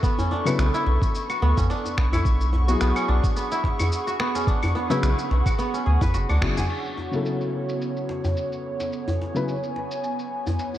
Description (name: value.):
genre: organic downtempo.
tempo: 108 BPM.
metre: 4/4.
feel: swing 55% on 16ths.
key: B dorian.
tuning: A4 = 439 Hz.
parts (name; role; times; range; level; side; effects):
felt-muted upright piano; accompaniment; 0.0-9.5 s; C#3 to B4; -29 LUFS; left 2 dB; sidechain pumping, low-pass filter, ping-pong delay, shimmer reverb.
airy breathy pad; sustained chords; 0.0-10.8 s; B3 to C#6; -30 LUFS; right 1 dB; chorus, sidechain pumping, shimmer reverb.
kora; arpeggios; 0.0-8.0 s; B3 to B4; -28 LUFS; right 1 dB; ping-pong delay, shimmer reverb.
dusty soul sampler-style drum kit; drums; 0.0-10.8 s; claves, crash cymbal, finger snaps, shaker; -34 LUFS; left 1 dB; low-pass filter on perc, low-pass filter on snare, low-pass filter on cymbals, low-pass filter on room.
electronic kick drum; drums; 0.0-6.5 s; none; -24 LUFS; equal; none.
djembe; percussion; 0.2-10.8 s; none; -28 LUFS; equal; none.
round analog bass; bass; 0.6-6.6 s; F#1 to D2; -21 LUFS; equal; sidechain pumping.
room: moderate concert hall reverb, RT60 1.9 s.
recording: worn, warbling old tape, cassette tape, warbly pitch drift.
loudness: -21 LUFS.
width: side -13 dB against mid.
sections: 0.0-6.7 A section; 6.7-10.8 B section.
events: band accent 6.4; filter sweep on felt piano 6.7-10.8.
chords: 0.0 Bm9; 2.3 E13/B; 6.7 Bsus2.